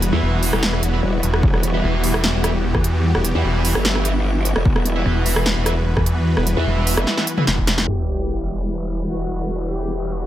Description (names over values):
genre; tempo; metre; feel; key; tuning
heavy wobble dubstep; 149 BPM; 4/4; half-time; E minor; A4 = 438 Hz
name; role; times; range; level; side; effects
supersaw pad; sustained chords; 0.0-10.3 s; E3 to B4; -27 LUFS; equal; sidechain pumping
snarling distorted saw bass; bass; 0.0-7.9 s; E1 to E2; -19 LUFS; equal; overdrive
big-room dance drum kit; drums; 0.0-7.9 s; hi-hat, rim click, snare drum, toms; -22 LUFS; equal; none
granular cloud pad; texture; 0.0-10.3 s; G3 to B5; -28 LUFS; left 1 dB; built-in reverb, sidechain pumping
fuzz guitar; stabs; 0.1-7.4 s; E4 to E5; -28 LUFS; right 1 dB; distortion, tape echo
growl bass; bass; 0.1-10.3 s; E1 to E2; -22 LUFS; equal; chorus, overdrive
electronic kick drum; drums; 1.4-7.7 s; none; -18 LUFS; equal; none
soft supersaw; melody; 7.9-10.3 s; F#4 to G4; -30 LUFS; left 1 dB; tape echo
sub drop; sound effects; 7.9-9.5 s; none; -27 LUFS; equal; none
room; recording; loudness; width
light reverb, digital ambience; low-pass filter; -17 LUFS; side -12 dB against mid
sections
0.0-7.9 A section; 7.9-10.3 B section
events
drop 0.0-7.9; drum fill 7.1-7.9; band accent 7.8; impact 7.9-9.5; filter sweep 7.9-10.3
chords
0.0 Emadd9; 7.9 Em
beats
0.22 0.63 1.03 | 1.43 1.83 2.24 2.64 | 3.04 3.45 3.85 4.25 | 4.65 5.06 5.46 5.86 | 6.26 6.67 7.07 7.47 | 7.88 8.28 8.68 9.08 | 9.49 9.89